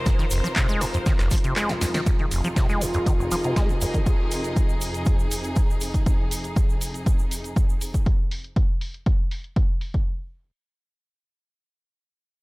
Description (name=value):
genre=acid house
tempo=120 BPM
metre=4/4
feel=straight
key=F minor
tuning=A4 = 442 Hz
part: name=rich studio string section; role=sustained chords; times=0.0-8.0 s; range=F2 to C5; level=-32 LUFS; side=equal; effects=sidechain pumping
part: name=rich chamber string section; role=texture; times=0.0-6.1 s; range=F4 to Eb5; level=-31 LUFS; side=equal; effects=sidechain pumping
part: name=acid bass, saw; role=riff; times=0.1-4.0 s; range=F1 to Ab3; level=-26 LUFS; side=equal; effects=tube saturation, cassette tape, tape echo
part: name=dusty soul sampler-style drum kit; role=drums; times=0.1-3.9 s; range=hi-hat, snare drum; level=-39 LUFS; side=equal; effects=none
part: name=electronic kick drum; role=drums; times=0.1-10.0 s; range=none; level=-22 LUFS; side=equal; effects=none
part: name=punchy analog drum machine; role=drums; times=0.1-10.0 s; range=handclaps, hi-hat, rim click, snare drum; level=-31 LUFS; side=equal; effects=low-pass filter on snare, low-pass filter on hats, low-pass filter on room
part: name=tube shaker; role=percussion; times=0.1-8.0 s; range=none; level=-37 LUFS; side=right 3 dB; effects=none
room=light reverb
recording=none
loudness=-21 LUFS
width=side -23 dB against mid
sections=0.0-2.1 A section; 2.1-10.1 B section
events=drop 0.0-2.1; kick drops out 1.6-2.1; drum fill 1.7-2.1; band accent 1.9; fade-out on string section 2.1-6.1; filter sweep on acid bass 2.1-4.1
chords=0.0 Fm7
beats=| 0.06 0.56 1.06 1.56 | 2.06 2.56 3.06 3.56 | 4.06 4.56 5.06 5.56 | 6.06 6.56 7.06 7.56 | 8.06 8.56 9.06 9.56